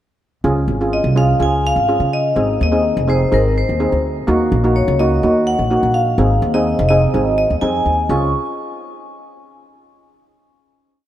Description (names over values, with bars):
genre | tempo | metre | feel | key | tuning
calypso | 126 BPM | 4/4 | straight | Db major | A4 = 440 Hz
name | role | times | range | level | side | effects
steel pan | accompaniment | 0.4-8.3 s | Bb3 to Ab4 | -19 LUFS | right 1 dB | none
upright bass | bass | 0.4-8.3 s | F1 to Db3 | -18 LUFS | equal | none
vibraphone with medium hard mallets | melody | 0.9-8.3 s | Bb4 to Db6 | -18 LUFS | left 1 dB | none
room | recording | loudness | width
moderate lush hall reverb, RT60 3.2 s | rough home demo mix | -14 LUFS | side -12 dB against mid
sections
0.4-8.1 verse; 8.1-10.0 final chord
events
none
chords
0.4 Db; 2.4 Ab; 4.3 Ebm7; 6.2 Ab; 8.1 Db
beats
| 0.44 0.92 1.40 1.88 | 2.36 2.84 3.32 3.80 | 4.28 4.76 5.23 5.71 | 6.19 6.66 7.14 7.62 | 8.09